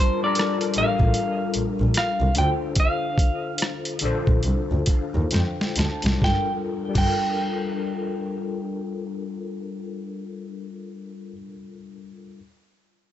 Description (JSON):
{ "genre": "R&B, neo-soul", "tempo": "66-77 BPM", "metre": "4/4", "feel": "swing 61% on 16ths", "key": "G minor", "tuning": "A4 = 439 Hz", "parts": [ { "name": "electric guitar through a small old amp", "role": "melody", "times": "0.0-11.4 s", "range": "C5 to G5", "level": "-26 LUFS", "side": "right 1 dB", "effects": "analog delay" }, { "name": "overdriven tine electric piano", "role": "accompaniment", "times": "0.0-12.4 s", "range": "D3 to A5", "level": "-28 LUFS", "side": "left 4 dB", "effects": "ensemble chorus" }, { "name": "boom bap sampler-style drum kit", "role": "drums", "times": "0.4-7.2 s", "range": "crash cymbal, hi-hat, kick drum, rim click, snare drum", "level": "-23 LUFS", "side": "equal", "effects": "overdrive" }, { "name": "rich double bass", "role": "bass", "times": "0.8-7.0 s", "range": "G1 to F2", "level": "-23 LUFS", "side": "equal", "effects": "none" } ], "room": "little or no reverb", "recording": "nothing above 8.0 kHz", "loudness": "-21 LUFS", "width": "side -12 dB against mid", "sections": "0.0-6.2 A section; 6.2-9.9 B section", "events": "slowing down 0.0-6.2; tine electric piano fill 4.4-6.2; drum fill 5.3-6.2", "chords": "0.0 Gm9; 2.4 Dm7; 6.2 Gm9" }